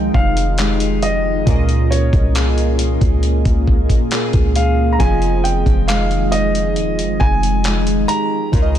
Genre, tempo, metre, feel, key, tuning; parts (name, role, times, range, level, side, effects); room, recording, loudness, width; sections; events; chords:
contemporary R&B; 68 BPM; 4/4; straight; F minor; A4 = 441 Hz
warm baby grand piano; melody; 0.0-8.8 s; Db5 to Bb5; -22 LUFS; equal
warm analog keys; accompaniment; 0.0-8.8 s; Bb2 to Eb5; -24 LUFS; right 1 dB; chorus, phaser
glassy FM pad; sustained chords; 0.0-8.8 s; Db3 to Ab4; -22 LUFS; right 1 dB; ensemble chorus, built-in reverb
fingerpicked steel-string acoustic guitar; arpeggios; 0.0-8.8 s; Db3 to Ab4; -25 LUFS; left 2 dB
warm 808-style bass; bass; 0.0-8.8 s; Eb1 to Db2; -17 LUFS; equal
dusty soul sampler-style drum kit; drums; 0.1-8.8 s; handclaps, hi-hat, kick drum; -18 LUFS; equal; vintage 12-bit sampler grit
little or no reverb; -13 LUFS; side -10 dB against mid
0.0-8.8 A section
0.0 Fm9; 1.5 Db6; 5.0 Fm9